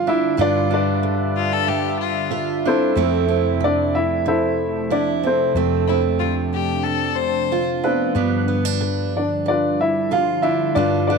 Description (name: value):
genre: acoustic folk-pop ballad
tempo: 93 BPM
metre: 4/4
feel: straight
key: unclear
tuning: A4 = 440 Hz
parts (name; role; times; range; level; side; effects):
- warm upright piano; melody; 0.0-11.2 s; B3 to F5; -20 LUFS; left 2 dB; none
- fingerpicked steel-string acoustic guitar; accompaniment; 0.0-11.2 s; F2 to F4; -23 LUFS; right 13 dB; none
- hollow soft pad; sustained chords; 0.0-11.2 s; C3 to E5; -27 LUFS; left 1 dB; chorus
- woody fretless electric bass; bass; 0.0-11.2 s; F2 to G2; -26 LUFS; left 1 dB; none
- clear violin; second line; 1.4-7.7 s; E4 to C5; -24 LUFS; left 11 dB; none
room: moderate plate reverb, RT60 2.8 s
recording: 1960s-style stereo with parts hard left and right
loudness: -17 LUFS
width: side -5 dB against mid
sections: 0.0-11.2 A section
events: none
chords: 0.0 G7; 3.0 Fmaj7; 5.6 Dm7/F; 8.2 G7